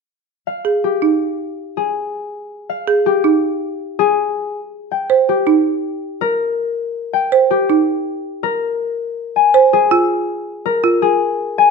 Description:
classical, minimalist pattern music; 162 BPM; 6/4; straight; F minor; A4 = 439 Hz
concert harp; melody; 0.5-11.7 s; G4 to Ab5; -17 LUFS; left 7 dB
folk marimba with medium hard mallets; arpeggios; 0.6-11.1 s; Eb4 to C5; -15 LUFS; right 7 dB
moderate large studio reverb, RT60 1.0 s; -14 LUFS; side -4 dB against mid
0.1-11.7 A section
0.1 Fm9; 4.5 Eb; 9.0 Bb5

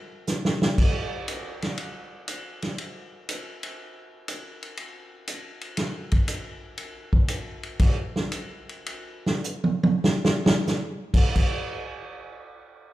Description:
jazz; 84-120 BPM; 4/4; swing 69% on 8ths
vintage drum kit; drums; 0.3-11.6 s; crash cymbal, hi-hat, kick drum, ride cymbal, snare drum, toms; -24 LUFS; equal
moderate recital hall reverb, RT60 1.5 s; recorded in a church or concert hall; -23 LUFS; side -16 dB against mid
0.0-8.9 A section; 8.9-11.4 B section; 11.4-12.9 C section
drum fill 0.3-0.8, 9.4-10.7; slowing down 6.8-11.4

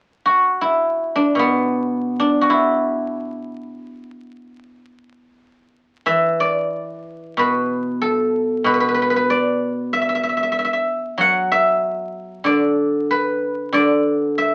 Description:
chinese traditional, Chinese solo plucked strings; 72-96 BPM; 4/4; rubato; E shang mode; A4 = 440 Hz
guzheng; solo; 0.3-14.5 s; B2 to F#5; -19 LUFS; equal
wet studio reverb, RT60 0.5 s; very old 78 rpm record, vinyl crackle; -19 LUFS; mono
0.0-6.1 A section; 6.1-14.5 B section

